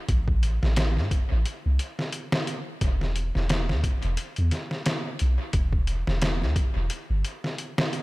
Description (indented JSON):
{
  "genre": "trip hop",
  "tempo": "88 BPM",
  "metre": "4/4",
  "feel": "swing 56% on 16ths",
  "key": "E minor",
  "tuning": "A4 = 440 Hz",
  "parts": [
    { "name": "soft 808-style bass", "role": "bass", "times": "0.1-7.2 s", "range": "E1 to A2", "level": "-24 LUFS", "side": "equal", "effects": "tube saturation" },
    { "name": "trip hop sampler-style drum kit", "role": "drums", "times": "0.1-8.0 s", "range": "hi-hat, kick drum, snare drum", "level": "-27 LUFS", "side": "equal", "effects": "dub echo" }
  ],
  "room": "digital ambience",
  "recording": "echo-heavy mix",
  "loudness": "-24 LUFS",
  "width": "side -21 dB against mid",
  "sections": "0.0-8.0 A section",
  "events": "none",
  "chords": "none",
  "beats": "| 0.09 0.77 1.46 2.14 | 2.82 3.50 4.18 4.86 | 5.55 6.23 6.91 7.59"
}